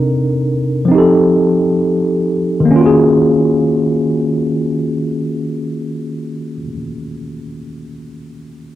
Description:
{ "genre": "hip hop", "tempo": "free time", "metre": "none", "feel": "none", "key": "Eb minor", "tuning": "A4 = 441 Hz", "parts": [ { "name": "tine electric piano", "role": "accompaniment", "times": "0.0-8.8 s", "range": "C3 to Bb4", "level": "-13 LUFS", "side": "equal", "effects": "overdrive, medium stereo tremolo, low-pass filter" } ], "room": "wet small room reverb, RT60 0.5 s", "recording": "none", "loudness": "-12 LUFS", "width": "side -13 dB against mid", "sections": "0.0-2.7 A section; 2.7-6.4 B section", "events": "none", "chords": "0.0 Cm7; 0.9 F7; 2.7 Ebm11" }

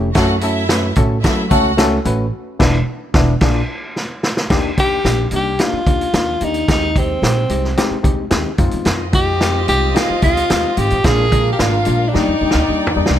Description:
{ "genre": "uptempo 1960s-style soul", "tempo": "110 BPM", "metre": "4/4", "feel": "straight", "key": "Eb major from 4.5 s", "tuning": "A4 = 440 Hz", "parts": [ { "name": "barky reed electric piano", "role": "accompaniment", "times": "0.0-13.2 s", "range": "G3 to B4", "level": "-20 LUFS", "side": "left 3 dB", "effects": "overdrive" }, { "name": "upright bass", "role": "bass", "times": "0.0-13.2 s", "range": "E1 to F#3", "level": "-20 LUFS", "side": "right 1 dB", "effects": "none" }, { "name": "vintage drum kit", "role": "drums", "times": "0.1-13.2 s", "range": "crash cymbal, hi-hat, kick drum, snare drum, toms", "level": "-18 LUFS", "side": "equal", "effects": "none" }, { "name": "warm studio violin section", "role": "second line", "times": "0.2-1.7, 8.9-13.2 s", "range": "C4 to G5", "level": "-22 LUFS", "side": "right 1 dB", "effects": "none" }, { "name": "breathy tenor saxophone", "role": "melody", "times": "4.8-13.0 s", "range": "C4 to Ab4", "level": "-18 LUFS", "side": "equal", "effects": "none" } ], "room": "light reverb", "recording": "none", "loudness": "-14 LUFS", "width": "side -11 dB against mid", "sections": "0.0-4.5 A section; 4.5-13.2 B section", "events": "band accent 2.3-4.5; drum fill 4.0-4.5, 12.1-13.2", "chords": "0.2 F#m; 2.3 E5; 3.4 Bb7; 4.5 Ebmaj7; 6.7 Abmaj7; 8.6 Fm7; 11.0 Bb7; 12.1 Ebmaj7" }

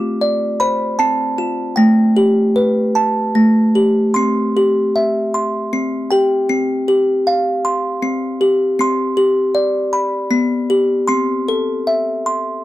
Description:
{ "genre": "children's music, lullaby", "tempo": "77 BPM", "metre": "3/4", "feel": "rubato", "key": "C major", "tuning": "A4 = 440 Hz", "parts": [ { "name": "music box", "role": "solo", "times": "0.0-12.6 s", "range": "A3 to D6", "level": "-14 LUFS", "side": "equal", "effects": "none" } ], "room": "light reverb", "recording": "dry, close 1970s-style studio recording", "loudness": "-14 LUFS", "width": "side -15 dB against mid", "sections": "0.0-12.6 A section", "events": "none", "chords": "0.0 Dm7; 1.8 Gadd9; 4.1 C; 6.5 Fsus2; 8.8 C5; 9.5 G; 11.1 C6" }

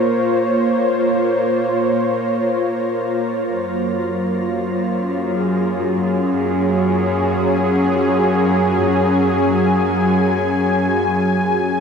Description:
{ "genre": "ambient", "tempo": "free time", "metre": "none", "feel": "none", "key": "unclear", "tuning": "A4 = 440 Hz", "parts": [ { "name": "warm analog pad", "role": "sustained chords", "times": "0.0-11.8 s", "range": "Gb3 to Ab5", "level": "-16 LUFS", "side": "equal", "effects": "chorus" }, { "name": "clear studio cello section", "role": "bass", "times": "0.0-11.8 s", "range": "Gb2 to Bb2", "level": "-25 LUFS", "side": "left 1 dB", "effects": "none" }, { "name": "organ-like drone", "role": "drone", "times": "0.0-11.8 s", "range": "Bb3 to F4", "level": "-28 LUFS", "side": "left 1 dB", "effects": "ensemble chorus, built-in reverb" } ], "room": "wet lush hall reverb, RT60 2.7 s", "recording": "dark, warm production", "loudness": "-16 LUFS", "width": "side -6 dB against mid", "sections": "0.0-11.8 A section", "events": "fade-in on cello section 0.0-11.8; fade-in on synth drone 0.0-11.8", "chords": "0.0 Bbm; 3.5 Gbsus2" }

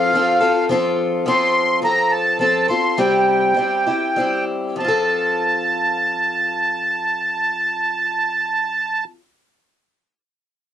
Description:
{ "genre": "acoustic folk duo or small band", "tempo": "94-107 BPM", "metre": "3/4", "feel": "straight", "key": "F major", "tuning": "A4 = 440 Hz", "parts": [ { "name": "accordion", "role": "melody", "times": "0.0-9.0 s", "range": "F5 to C6", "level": "-18 LUFS", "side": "right 1 dB", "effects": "light tremolo tuning, cassette tape" }, { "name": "warm fiddle", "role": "second line", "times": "0.0-0.9 s", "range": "F4", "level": "-29 LUFS", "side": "right 2 dB", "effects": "none" }, { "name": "picked acoustic archtop guitar", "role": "accompaniment", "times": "0.0-9.2 s", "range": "C3 to A4", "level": "-20 LUFS", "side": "left 2 dB", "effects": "none" } ], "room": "moderate booth ambience, RT60 0.2 s", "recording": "home recording on cassette, lossy compression artefacts", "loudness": "-16 LUFS", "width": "side -10 dB against mid", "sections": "0.0-1.3 A section; 1.3-4.8 B section; 4.8-8.6 C section", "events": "slowing down 1.3-4.8", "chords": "0.0 F; 3.0 C; 4.8 F" }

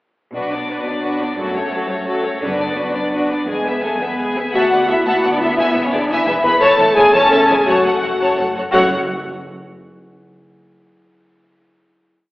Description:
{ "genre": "cinematic, heroic adventure film score", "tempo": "115 BPM (dotted quarters)", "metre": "6/8", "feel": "straight", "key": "F# minor", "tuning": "A4 = 442 Hz", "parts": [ { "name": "rich symphonic violin section", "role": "melody", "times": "0.3-8.9 s", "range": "A4 to B5", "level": "-20 LUFS", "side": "left 1 dB", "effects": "none" }, { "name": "warm symphonic viola section", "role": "accompaniment", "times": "0.3-8.9 s", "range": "F#3 to F#4", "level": "-23 LUFS", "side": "equal", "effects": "none" }, { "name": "warm French horn section", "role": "sustained chords", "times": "0.3-8.9 s", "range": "F#3 to B4", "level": "-18 LUFS", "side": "left 1 dB", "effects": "none" }, { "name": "warm studio double bass section", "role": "bass", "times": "0.3-8.9 s", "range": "E1 to D2", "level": "-34 LUFS", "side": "right 1 dB", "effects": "none" }, { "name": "warm symphonic cello section", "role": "bass", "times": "0.3-8.9 s", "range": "D2 to B2", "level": "-30 LUFS", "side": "right 1 dB", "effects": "none" }, { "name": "warm symphonic violin section", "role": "second line", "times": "0.4-8.9 s", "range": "D4 to A5", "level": "-20 LUFS", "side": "left 1 dB", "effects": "none" }, { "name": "timpani", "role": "percussion", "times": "2.4-2.9, 8.7-8.9 s", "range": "F#2", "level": "-35 LUFS", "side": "equal", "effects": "none" } ], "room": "wet scoring stage reverb, RT60 1.7 s", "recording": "recorded in a church or concert hall, telephone sound", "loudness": "-14 LUFS", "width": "side -18 dB against mid", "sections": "0.3-4.5 build; 4.5-8.7 theme; 8.7-9.8 final chord", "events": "build-up 0.3-4.5", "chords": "0.3 Bm; 1.4 F#m; 2.4 Bm/F#; 3.5 E; 4.5 Dadd9; 5.6 E; 6.6 A/E; 7.7 F#m" }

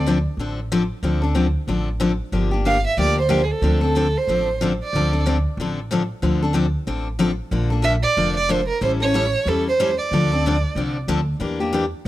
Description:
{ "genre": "acoustic string swing (jazz manouche)", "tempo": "185 BPM", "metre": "4/4", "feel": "swing 58% on 8ths", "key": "D minor", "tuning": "A4 = 440 Hz", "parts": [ { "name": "warm violin", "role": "melody", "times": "0.0, 2.7-5.2, 7.8-10.9 s", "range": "G#4 to F5", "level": "-21 LUFS", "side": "right 3 dB", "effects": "none" }, { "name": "picked steel-string acoustic guitar", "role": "accompaniment", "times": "0.0-12.1 s", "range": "D3 to A4", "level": "-22 LUFS", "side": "left 3 dB", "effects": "none" }, { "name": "upright bass", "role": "bass", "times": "0.0-12.1 s", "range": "F1 to E2", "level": "-23 LUFS", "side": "equal", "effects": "none" } ], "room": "studio reverb", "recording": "dry, close 1970s-style studio recording", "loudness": "-18 LUFS", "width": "side -15 dB against mid", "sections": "0.0-12.1 A section", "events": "none", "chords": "0.0 Dm7; 2.3 Gm7; 3.6 Dm7; 7.5 Bbmaj7; 8.8 A7#9; 10.1 Dm7; 11.4 Em7b5" }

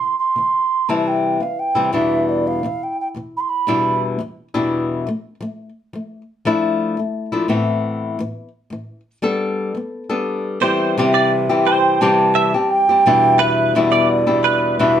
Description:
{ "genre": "acoustic pop", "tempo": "86 BPM", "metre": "4/4", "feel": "straight", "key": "C major", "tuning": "A4 = 439 Hz", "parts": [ { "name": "mellow alto ocarina", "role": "melody", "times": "0.0-4.0, 11.0-15.0 s", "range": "D5 to C6", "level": "-18 LUFS", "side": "right 3 dB", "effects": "none" }, { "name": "flamenco guitar", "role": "accompaniment", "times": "0.0-15.0 s", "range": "E2 to A4", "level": "-18 LUFS", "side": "left 3 dB", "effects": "none" }, { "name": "direct-recorded clean electric guitar", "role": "arpeggios", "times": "10.6-14.9 s", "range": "B4 to E5", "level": "-19 LUFS", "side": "right 6 dB", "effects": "ensemble chorus" } ], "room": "moderate studio reverb, RT60 0.6 s", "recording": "none", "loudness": "-16 LUFS", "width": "side -9 dB against mid", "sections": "0.0-10.6 A section; 10.6-15.0 B section", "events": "none", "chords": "0.0 C; 1.9 Em7; 5.1 Dmadd9/F; 7.5 Amadd9; 9.2 Gadd9; 10.6 C; 13.1 Em7" }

